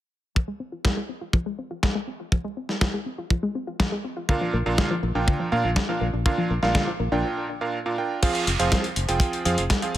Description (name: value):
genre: italo disco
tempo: 122 BPM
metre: 4/4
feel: straight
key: F dorian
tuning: A4 = 440 Hz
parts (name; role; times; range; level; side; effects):
- wide unison pluck; arpeggios; 0.4-7.2 s; D3 to F4; -30 LUFS; left 2 dB; cassette tape, ping-pong delay
- kick drum; drums; 0.4-9.8 s; none; -21 LUFS; equal; none
- dusty soul sampler-style drum kit; drums; 0.8-10.0 s; crash cymbal, hi-hat, snare drum; -27 LUFS; equal; overdrive
- bright electric grand piano; stabs; 4.3-10.0 s; Bb2 to G5; -25 LUFS; right 3 dB; ping-pong delay
- fingered electric bass; bass; 4.5-10.0 s; F1 to Bb2; -26 LUFS; equal; none
room: light reverb, digital ambience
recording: none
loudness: -22 LUFS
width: side -13 dB against mid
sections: 0.4-8.2 A section; 8.2-10.0 B section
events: filter sweep on synth arpeggio sound 0.4-8.2; break 7.2-8.2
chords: 0.4 Fm; 4.3 Bb; 8.2 Fm